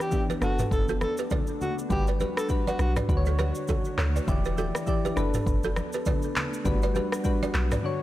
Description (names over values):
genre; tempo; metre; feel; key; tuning
afrobeats; 101 BPM; 4/4; swing 58% on 16ths; unclear; A4 = 440 Hz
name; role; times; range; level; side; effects
breathy alto saxophone; melody; 0.0-2.9 s; F#4 to A4; -33 LUFS; equal; tape echo
soft electric-piano-like synth keys; accompaniment; 0.0-8.0 s; D3 to D5; -31 LUFS; left 2 dB; chorus
glassy FM pad; sustained chords; 0.0-8.0 s; D3 to C#5; -37 LUFS; equal; ensemble chorus, built-in reverb
afro-pop drum kit; drums; 0.0-7.8 s; handclaps, kick drum, rim click, shaker, toms; -29 LUFS; equal; none
balafon; riff; 0.3-7.8 s; F#4 to D5; -34 LUFS; right 4 dB; tape echo
congas; percussion; 0.3-7.8 s; none; -37 LUFS; right 1 dB; none
deep log drum bass; bass; 0.4-7.8 s; E1 to D2; -27 LUFS; equal; none
room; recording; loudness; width
digital ambience; none; -24 LUFS; side -14 dB against mid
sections
0.0-8.0 A section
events
break 7.8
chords
0.4 Bm7/F#; 1.9 Gmaj7; 3.1 Dmaj7; 4.3 Em7; 5.2 Bm7/F#; 6.7 Gmaj7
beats
0.12 0.71 1.31 | 1.90 2.50 3.09 3.69 | 4.28 4.87 5.47 6.06 | 6.66 7.25 7.84